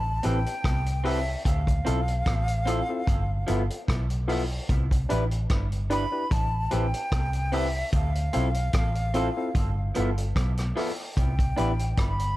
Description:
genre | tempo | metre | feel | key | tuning
lovers rock reggae | 74 BPM | 4/4 | swing 55% on 16ths | C major | A4 = 440 Hz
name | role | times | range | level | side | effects
breathy jazz flute | melody | 0.0-12.4 s | E5 to B5 | -32 LUFS | equal | tape echo
vintage muted fingered electric bass | bass | 0.0-12.4 s | G1 to D2 | -27 LUFS | equal | none
barky tine electric piano | accompaniment | 0.2-11.7 s | B3 to B4 | -32 LUFS | left 3 dB | overdrive
electric guitar through a small old amp | stabs | 0.2-11.7 s | F3 to B4 | -34 LUFS | right 3 dB | dub echo
vintage drum kit | drums | 0.2-12.4 s | hi-hat, kick drum, rim click | -28 LUFS | equal | none
room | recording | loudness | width
small room reverb | dark, warm production | -24 LUFS | side -16 dB against mid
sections
0.0-12.4 A section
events
none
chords
0.0 Am7; 1.5 Dm7; 3.1 G13; 4.7 Cmaj9; 6.3 Am7; 7.9 Dm7; 9.5 G13; 11.2 Cmaj9

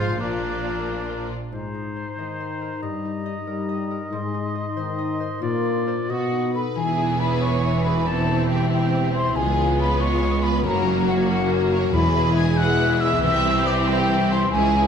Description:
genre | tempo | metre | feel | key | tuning
cinematic, heroic adventure film score | 92 BPM (dotted quarters) | 6/8 | straight | Ab lydian, E lydian from 6.8 s | A4 = 440 Hz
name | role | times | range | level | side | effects
warm symphonic violin section | melody | 0.0-1.3, 6.1-14.9 s | F#4 to G#5 | -31 LUFS | left 4 dB | none
clear oboe | second line | 0.0-6.5 s | D4 to D#5 | -32 LUFS | right 1 dB | none
clear studio violin section | second line | 0.0-1.3, 6.8-14.9 s | C4 to G#4 | -31 LUFS | left 3 dB | none
clear symphonic viola section | accompaniment | 0.0-1.3, 6.8-14.9 s | E3 to C4 | -28 LUFS | right 3 dB | none
mellow French horn section | sustained chords | 0.0-14.9 s | Eb3 to F#4 | -28 LUFS | left 5 dB | none
concert harp | arpeggios | 0.0-14.9 s | E2 to C6 | -29 LUFS | left 6 dB | none
clear trumpet | stabs | 0.0-1.3 s | Bb4 to C5 | -34 LUFS | right 1 dB | none
clear symphonic double bass section | bass | 0.0-1.3, 6.8-14.9 s | E1 to C#2 | -26 LUFS | right 3 dB | none
rich symphonic cello section | bass | 0.0-1.3, 6.8-14.9 s | C2 to Bb2 | -26 LUFS | right 3 dB | none
dark clarinet | second line | 1.5-6.5 s | Eb4 to F#4 | -31 LUFS | right 1 dB | none
mellow concert flute | second line | 1.5-14.9 s | F#5 to G#6 | -27 LUFS | equal | none
timpani | percussion | 11.9-12.5 s | E2 | -29 LUFS | equal | none
room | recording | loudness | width
wet recital hall reverb, RT60 1.6 s | none | -20 LUFS | side -7 dB against mid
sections
0.0-1.5 A section; 1.5-6.8 B section; 6.8-14.9 C section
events
none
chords
0.2 Bb; 1.5 Abadd9; 2.8 Eb/G; 4.1 Ab; 5.4 Bbadd9; 6.1 B7; 6.8 E; 8.1 C/E; 9.4 C#7; 10.6 F#; 11.9 E; 13.2 C

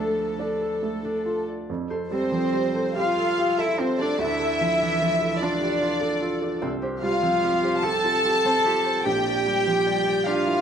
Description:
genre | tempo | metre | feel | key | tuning
neoclassical piano and strings | 49 BPM (dotted quarters) | 6/8 | uneven beats, rubato | unclear | A4 = 441 Hz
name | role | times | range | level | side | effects
dark studio violin section | melody | 0.0-10.6 s | A4 to A5 | -25 LUFS | left 3 dB | none
warm cello | second line | 0.0-10.6 s | F3 to A4 | -25 LUFS | right 2 dB | none
warm upright piano | accompaniment | 0.0-10.6 s | Bb1 to D5 | -28 LUFS | right 3 dB | none
concert harp | arpeggios | 0.0-10.6 s | C4 to D5 | -33 LUFS | left 3 dB | slapback echo
room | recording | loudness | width
wet large studio reverb, RT60 1.4 s | dark, warm production | -21 LUFS | side -8 dB against mid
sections
0.0-1.7 A section; 1.7-10.6 B section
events
none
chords
0.0 Dm; 1.7 Fadd9; 4.2 Dm; 6.6 Csus4; 9.1 Gm/Bb

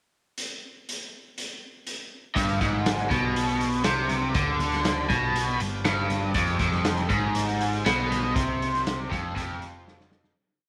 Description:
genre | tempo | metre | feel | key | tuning
psychedelic rock | 120 BPM | 4/4 | straight | unclear | A4 = 440 Hz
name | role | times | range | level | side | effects
raw garage drum kit | drums | 0.4-10.4 s | hi-hat, kick drum, snare drum | -32 LUFS | equal | none
bright tonewheel organ | sustained chords | 2.3-10.3 s | Ab3 to C5 | -42 LUFS | equal | none
overdriven electric guitar | riff | 2.4-10.4 s | F2 to D3 | -28 LUFS | equal | flanger
hollow-body short-scale picked electric bass | bass | 2.4-10.3 s | F1 to D2 | -34 LUFS | equal | none
congas | percussion | 2.6-10.4 s | none | -43 LUFS | equal | none
room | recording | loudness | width
light reverb, studio reverb | none | -26 LUFS | mono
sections
0.4-2.4 pickup bar; 2.4-10.4 groove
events
fade-out 8.4-10.4; drum fill 9.9-10.4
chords
0.4 N.C.; 2.4 G7; 6.4 Fmadd9

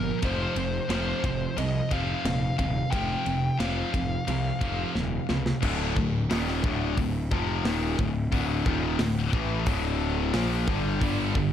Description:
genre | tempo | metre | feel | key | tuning
heavy metal | 89 BPM | 4/4 | straight | D phrygian | A4 = 440 Hz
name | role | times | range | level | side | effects
nasal lead guitar with a parked wah | melody | 0.0-4.9 s | Bb4 to G5 | -33 LUFS | left 2 dB | overdrive, digital delay
heavy high-gain guitar | riff | 0.0-11.5 s | D2 to Bb3 | -32 LUFS | left 9 dB | distortion
scooped high-gain guitar | riff | 0.0-5.6, 11.0-11.5 s | F2 to G3 | -31 LUFS | right 9 dB | distortion
fuzz picked electric bass | bass | 0.0-11.5 s | D1 to C#2 | -29 LUFS | equal | overdrive
tight metal drum kit | drums | 0.2-11.5 s | crash cymbal, hi-hat, kick drum, ride cymbal, snare drum | -31 LUFS | equal | none
distorted electric guitar | riff | 5.6-11.5 s | D2 to Bb3 | -30 LUFS | equal | overdrive
room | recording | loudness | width
little or no reverb | dark, warm production | -24 LUFS | side -10 dB against mid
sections
0.0-5.6 A section; 5.6-11.5 B section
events
drum fill 5.0-5.6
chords
0.2 F5; 5.6 Dm; 11.0 G5

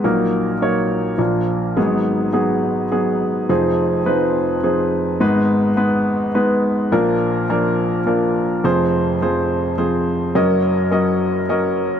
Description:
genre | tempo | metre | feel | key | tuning
folk | 105 BPM | 3/4 | straight | unclear | A4 = 440 Hz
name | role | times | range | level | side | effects
warm upright piano | solo | 0.0-12.0 s | F1 to Eb5 | -16 LUFS | equal | none
room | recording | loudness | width
light reverb | close, detailed microphones | -16 LUFS | side -8 dB against mid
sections
0.0-1.8 A section; 1.8-8.6 B section; 8.6-12.0 C section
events
none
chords
0.0 Ebm/Bb; 1.2 Bb; 1.8 Abm7; 3.5 Fm7; 5.2 Abm; 6.9 Bb; 8.6 Fm; 10.4 Gb6

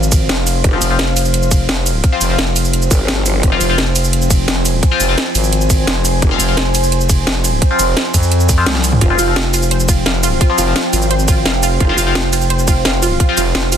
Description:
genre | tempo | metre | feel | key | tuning
dark technical drum and bass | 172 BPM | 4/4 | straight | F minor | A4 = 440 Hz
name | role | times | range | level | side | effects
deep dark ambient pad | sustained chords | 0.0-13.8 s | F3 to Ab5 | -20 LUFS | equal | chorus, built-in reverb, sidechain pumping
growling FM bass | bass | 0.0-13.8 s | F1 to F2 | -16 LUFS | equal | none
drum and bass drum kit | drums | 0.0-13.8 s | cabasa, hi-hat, ride cymbal, snare drum, toms | -17 LUFS | right 1 dB | overdrive, studio ambience
electronic kick drum | drums | 0.1-13.3 s | none | -13 LUFS | equal | studio ambience
growl bass | bass | 0.6-0.8, 2.9-3.6, 6.2-6.4, 9.0-9.2, 11.8-12.0 s | F1 to G1 | -18 LUFS | equal | chorus, tube saturation, sidechain pumping
band-passed chord stab | stabs | 0.7-13.4 s | F3 to F4 | -20 LUFS | left 6 dB | phaser, lush chorus, cassette tape, digital delay
wide unison pluck | arpeggios | 9.0-13.8 s | F4 to F5 | -20 LUFS | right 3 dB | sidechain pumping, digital delay
room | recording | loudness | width
digital ambience | dense, heavily limited modern master | -11 LUFS | side -9 dB against mid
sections
0.0-13.8 A section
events
drum fill 8.7-9.0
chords
0.0 F5

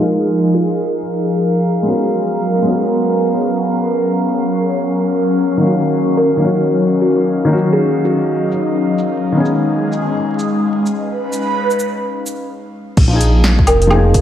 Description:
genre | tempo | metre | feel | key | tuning
future garage | 128 BPM | 4/4 | swing 62% on 16ths | Eb minor | A4 = 440 Hz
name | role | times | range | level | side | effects
felt-muted upright piano | accompaniment | 0.0-10.2, 13.1-14.2 s | Eb3 to Bb4 | -19 LUFS | left 1 dB | vintage 12-bit sampler grit, sidechain pumping, low-pass filter, analog delay
airy breathy pad | sustained chords | 0.0-14.2 s | F3 to B4 | -16 LUFS | left 1 dB | chorus, phaser, sidechain pumping
drifting glass-harmonics texture | texture | 0.0-12.5 s | F5 | -28 LUFS | right 4 dB | chorus, built-in reverb
deep house drum kit | drums | 0.1-14.2 s | cabasa, crash cymbal, hi-hat, snare drum, woodblock | -20 LUFS | equal | none
kalimba | melody | 0.5-1.2, 6.2-8.7, 13.7-14.2 s | F4 to Bb4 | -19 LUFS | right 1 dB | analog delay
dark detuned saw bass | bass | 13.0-14.2 s | F1 to Bb1 | -13 LUFS | equal | sidechain pumping
electronic kick drum | drums | 13.0-14.2 s | none | -13 LUFS | equal | none
room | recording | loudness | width
wet lush hall reverb, RT60 2.0 s | dreamy mix soaked in reverb, vinyl crackle, low-pass filter | -13 LUFS | side -10 dB against mid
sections
0.0-13.0 A section; 13.0-14.2 B section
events
filter sweep on analog synth pad 0.0-13.0; filter sweep on felt piano 0.0-13.0; filter sweep 0.0-13.0; break 12.5-13.0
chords
0.0 Bb7sus4; 1.7 Abm11; 5.5 Ebm7; 9.2 B69; 13.0 Bb7sus4

